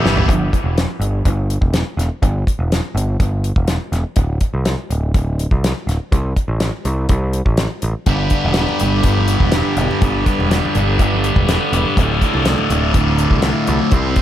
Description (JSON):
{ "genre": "psychedelic rock", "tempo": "123 BPM", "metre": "4/4", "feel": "straight", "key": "unclear", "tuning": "A4 = 440 Hz", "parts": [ { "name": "combo organ", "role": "sustained chords", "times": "0.0-0.3, 8.1-14.2 s", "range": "G3 to C5", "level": "-27 LUFS", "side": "right 3 dB", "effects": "spring reverb" }, { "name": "thick fuzz guitar", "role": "riff", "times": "0.0-0.3, 8.1-14.2 s", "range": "D2 to E4", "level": "-18 LUFS", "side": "equal", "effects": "distortion, phaser, analog delay" }, { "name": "overdriven picked electric bass", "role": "bass", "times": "0.0-14.1 s", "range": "D1 to C2", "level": "-18 LUFS", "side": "equal", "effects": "none" }, { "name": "congas", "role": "percussion", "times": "0.0-0.3, 8.1-14.0 s", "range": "none", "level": "-31 LUFS", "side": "equal", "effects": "none" }, { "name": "damped 70s drum kit", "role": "drums", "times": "0.1-14.2 s", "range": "hi-hat, kick drum, snare drum, toms", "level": "-19 LUFS", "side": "equal", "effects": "analog delay" } ], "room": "small room reverb", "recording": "echo-heavy mix", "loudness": "-14 LUFS", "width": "side -12 dB against mid", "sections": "0.3-14.2 A section", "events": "drum fill 0.0", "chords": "0.3 Em; 4.2 Csus2/D; 6.1 Am; 8.1 G; 12.0 Dmadd9" }